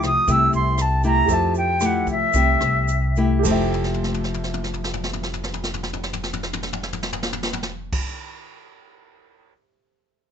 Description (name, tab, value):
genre	bossa nova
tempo	104-121 BPM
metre	4/4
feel	straight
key	F major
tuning	A4 = 440 Hz
part	silver concert flute	melody	0.0-3.3 s	E5 to E6	-20 LUFS	equal	none
part	clear concert grand piano	accompaniment	0.0-10.3 s	G4 to E5	-31 LUFS	right 8 dB	none
part	nylon-string guitar	accompaniment	0.0-8.1 s	C3 to G4	-26 LUFS	left 4 dB	none
part	upright bass	bass	0.0-8.0 s	F1 to F2	-24 LUFS	equal	none
part	jazz brush drum kit	drums	0.0-9.5 s	crash cymbal, hi-hat, kick drum, rim click, snare drum, toms	-28 LUFS	equal	none
part	tube shaker	percussion	0.0-8.0 s	none	-34 LUFS	right 7 dB	none
room	light reverb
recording	nothing above 7.9 kHz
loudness	-19 LUFS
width	side -8 dB against mid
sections	0.0-3.5 A section; 3.5-8.1 B section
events	slowing down 0.0-3.5; flute solo 0.0-3.5; drum fill 3.7-7.9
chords	0.0 Fmaj9